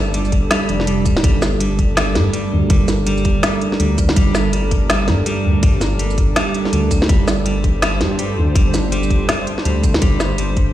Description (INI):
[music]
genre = half-time drum and bass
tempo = 164 BPM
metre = 4/4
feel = swing 60% on 16ths, half-time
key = G minor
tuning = A4 = 439 Hz
[part]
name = dark analog pad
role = sustained chords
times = 0.0-10.7 s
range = G3 to D5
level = -23 LUFS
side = right 2 dB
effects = chorus, sidechain pumping
[part]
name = dark detuned saw bass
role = bass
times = 0.0-10.7 s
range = D1 to G2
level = -18 LUFS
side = equal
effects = none
[part]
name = clean electric guitar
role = arpeggios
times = 0.1-10.6 s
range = G3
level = -23 LUFS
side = right 1 dB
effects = vintage 12-bit sampler grit, digital delay
[part]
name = organic electronic drum kit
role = drums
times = 0.1-10.7 s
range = hi-hat, shaker, snare drum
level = -21 LUFS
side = equal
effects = none
[part]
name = electronic kick drum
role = drums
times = 0.3-10.7 s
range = none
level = -15 LUFS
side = equal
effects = none
[sound]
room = light reverb, digital ambience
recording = played on a big sound system in a bare room, stone room reverb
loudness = -14 LUFS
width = side -13 dB against mid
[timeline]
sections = 0.0-10.7 A section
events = none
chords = 0.0 Gm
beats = 0.14 0.51 0.87 | 1.24 1.60 1.97 2.34 | 2.70 3.07 3.43 3.80 | 4.17 4.53 4.90 5.26 | 5.63 6.00 6.36 6.73 | 7.09 7.46 7.82 8.19 | 8.56 8.92 9.29 9.65 | 10.02 10.38